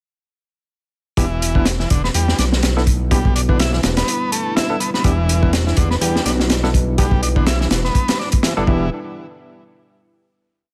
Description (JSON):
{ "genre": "breakbeat, breaks", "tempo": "124 BPM", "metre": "4/4", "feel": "swing 56% on 16ths", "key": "E minor pentatonic", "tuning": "A4 = 444 Hz", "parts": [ { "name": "dark analog pad", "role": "sustained chords", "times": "2.0-8.9 s", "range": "G3 to B4", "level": "-30 LUFS", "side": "equal", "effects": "chorus, phaser, sidechain pumping" }, { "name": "combo organ", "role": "riff", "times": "1.2-8.9 s", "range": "D3 to E4", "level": "-26 LUFS", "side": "equal", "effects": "digital delay" }, { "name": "bright tine electric piano", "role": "stabs", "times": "1.2-8.9 s", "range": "B3 to B4", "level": "-28 LUFS", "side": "equal", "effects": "digital delay" }, { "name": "fat analog bass", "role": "bass", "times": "1.2-8.9 s", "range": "E1 to E2", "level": "-22 LUFS", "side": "equal", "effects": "none" }, { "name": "crunchy breakbeat drum kit", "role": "drums", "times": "1.2-8.8 s", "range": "hi-hat, kick drum, snare drum", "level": "-20 LUFS", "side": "equal", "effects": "none" } ], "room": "studio ambience", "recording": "none", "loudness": "-17 LUFS", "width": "mono", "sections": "1.2-8.9 drop; 8.9-10.7 final hit", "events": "drop 1.2-8.9", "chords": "1.2 Em7; 8.9 N.C." }